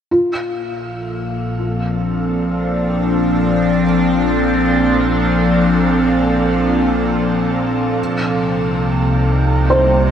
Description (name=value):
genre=ambient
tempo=free time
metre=none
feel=none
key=Bb major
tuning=A4 = 440 Hz
part: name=evolving wavetable pad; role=sustained chords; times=0.9-10.1 s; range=Bb2 to Eb4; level=-15 LUFS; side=left 1 dB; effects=chorus, built-in reverb, phaser
part: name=felt-muted upright piano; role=arpeggios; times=0.1-10.1 s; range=F4 to C5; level=-21 LUFS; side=equal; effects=diffuse ambient delay
part: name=round analog bass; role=bass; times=0.1-10.1 s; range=Bb1 to C2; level=-24 LUFS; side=right 1 dB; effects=none
part: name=organ-like drone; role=drone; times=0.6-10.1 s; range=Bb3 to A4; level=-23 LUFS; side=right 1 dB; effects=ensemble chorus, built-in reverb
room=wet shimmer reverb, RT60 7.3 s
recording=none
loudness=-14 LUFS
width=side -8 dB against mid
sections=0.1-10.1 A section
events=fade-in on analog synth bass 0.1-10.1; fade-out on synth drone 0.1-10.1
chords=0.1 Bbmaj7; 8.0 Cm7